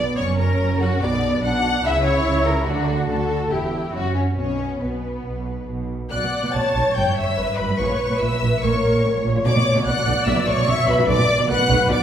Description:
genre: quick classical-period movement for string orchestra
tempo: 144 BPM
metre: 4/4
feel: rubato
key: B minor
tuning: A4 = 439 Hz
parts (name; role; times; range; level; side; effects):
- rich symphonic violin section; melody; 0.0-12.0 s; B4 to A6; -27 LUFS; left 3 dB; none
- rich studio violin section; second line; 0.0-12.0 s; B3 to A5; -24 LUFS; left 2 dB; none
- rich studio viola section; accompaniment; 0.0-12.0 s; B3 to E5; -24 LUFS; equal; none
- rich studio cello section; bass; 0.0-12.0 s; E2 to D3; -24 LUFS; right 2 dB; none
- rich symphonic double bass section; bass; 0.0-11.9 s; E1 to D2; -25 LUFS; right 2 dB; none
room: wet recital hall reverb, RT60 1.3 s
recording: heard from further back in the room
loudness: -18 LUFS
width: side -9 dB against mid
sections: 0.0-6.1 A section; 6.1-12.0 B section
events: none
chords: 0.2 F#; 1.0 Bm; 1.8 C#m6; 2.7 D; 3.5 Em; 3.9 F#5; 4.4 Bsus2; 7.0 Em/G; 7.8 A#dim; 9.5 E5/B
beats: 0.17 0.58 | 1.00 1.43 1.84 2.25 | 2.67 3.09 3.51 3.93 | 4.37 4.80 5.25 5.69 | 6.12 6.55 6.97 7.38 | 7.80 8.21 8.63 9.04 | 9.45 9.86 10.27 10.69 | 11.10 11.51 11.91

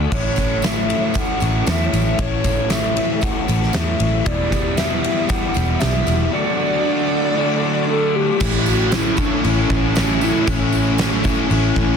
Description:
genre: rock, shoegaze and dream pop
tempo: 116 BPM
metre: 4/4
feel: straight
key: A mixolydian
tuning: A4 = 442 Hz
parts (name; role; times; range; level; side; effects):
- phased string machine; sustained chords; 0.0-12.0 s; G4 to C#6; -31 LUFS; equal; ensemble chorus, phaser
- crunchy overdriven guitar; riff; 0.0-12.0 s; A2 to F#4; -23 LUFS; left 13 dB; wide subtle chorus
- overdriven electric guitar; riff; 0.0-12.0 s; E2 to F#4; -25 LUFS; right 12 dB; reverse reverb
- vintage muted picked electric bass; bass; 0.0-12.0 s; E1 to E2; -21 LUFS; equal; none
- reedy FM lead; melody; 0.1-12.0 s; C#4 to F#5; -23 LUFS; equal; chorus, slapback echo
- huge arena drum kit; drums; 0.1-11.9 s; crash cymbal, kick drum, ride cymbal, snare drum; -22 LUFS; equal; none
- tambourine; percussion; 0.4-11.8 s; none; -35 LUFS; right 19 dB; none
- tight distorted guitar; riff; 8.4-12.0 s; A2 to E4; -26 LUFS; right 1 dB; distortion
room: small room ambience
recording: dense, heavily limited modern master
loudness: -16 LUFS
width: side -6 dB against mid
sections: 0.0-8.4 A section; 8.4-12.0 B section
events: none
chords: 0.1 A; 4.3 Em7; 6.3 D6; 8.4 A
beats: | 0.12 0.63 1.15 1.67 | 2.19 2.70 3.22 3.74 | 4.26 4.78 5.29 5.81 | 6.33 6.85 7.37 7.89 | 8.40 8.92 9.44 9.96 | 10.47 10.99 11.51

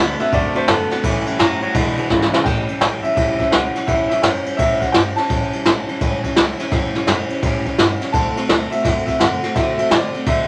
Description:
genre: rockabilly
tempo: 169 BPM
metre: 4/4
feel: swing 64% on 8ths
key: A mixolydian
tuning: A4 = 440 Hz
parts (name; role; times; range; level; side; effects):
- bright upright piano; melody; 0.0-10.5 s; A4 to A5; -24 LUFS; equal; none
- picked steel-string acoustic guitar; accompaniment; 0.0-10.5 s; E2 to F#4; -27 LUFS; equal; none
- twangy electric guitar; riff; 0.0-2.4 s; E2 to B3; -25 LUFS; equal; none
- upright bass; bass; 0.0-10.5 s; E1 to D3; -31 LUFS; equal; none
- jazz brush drum kit; drums; 0.2-10.4 s; crash cymbal, kick drum, ride cymbal, snare drum; -20 LUFS; equal; none
room: moderate studio ambience, RT60 0.5 s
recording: none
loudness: -18 LUFS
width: mono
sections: 0.0-2.5 A section; 2.5-10.5 B section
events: upright piano solo 0.0-2.5; drum fill 2.1-2.5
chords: 0.0 D7; 1.0 A7; 1.7 E7; 2.5 A7; 8.1 D7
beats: 0.33 0.68 | 1.04 1.39 1.75 2.10 | 2.46 2.81 3.17 3.52 | 3.88 4.23 4.59 4.95 | 5.30 5.66 6.01 6.37 | 6.72 7.08 7.43 7.79 | 8.14 8.50 8.85 9.21 | 9.56 9.91 10.27

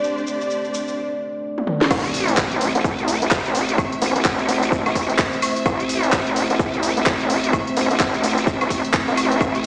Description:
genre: bass house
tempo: 128 BPM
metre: 4/4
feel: swing 60% on 16ths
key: A minor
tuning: A4 = 439 Hz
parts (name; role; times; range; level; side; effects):
- dark analog pad; sustained chords; 0.0-9.7 s; A3 to D5; -27 LUFS; equal; chorus, sidechain pumping
- garage drum kit; drums; 0.0-9.6 s; crash cymbal, handclaps, hi-hat, ride cymbal, shaker, snare drum, toms, woodblock; -26 LUFS; equal; none
- bright studio string section; texture; 0.0-9.7 s; A3 to E5; -32 LUFS; equal; sidechain pumping
- vowel-sweep wobble bass; bass; 1.9-9.7 s; A1 to C2; -24 LUFS; equal; chorus, sidechain pumping
- electronic kick drum; drums; 1.9-9.5 s; none; -25 LUFS; equal; none
- shaker and snare drum; drums; 1.9-9.7 s; none; -36 LUFS; equal; none
- impact; sound effects; 1.9-3.8 s; none; -37 LUFS; equal; none
room: moderate lush hall reverb, RT60 2.0 s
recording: played on a big sound system in a bare room, stone room reverb, low-pass filter, small speaker sound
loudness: -20 LUFS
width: mono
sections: 0.0-1.9 A section; 1.9-9.7 B section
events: filter sweep on analog synth pad 0.0-1.9; drum fill 1.6-1.9; drop 1.9-9.7; impact 1.9-3.8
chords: 0.0 Am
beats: | 0.03 0.50 0.97 1.44 | 1.91 2.38 2.85 3.31 | 3.78 4.25 4.72 5.19 | 5.66 6.13 6.59 7.06 | 7.53 8.00 8.47 8.94 | 9.41

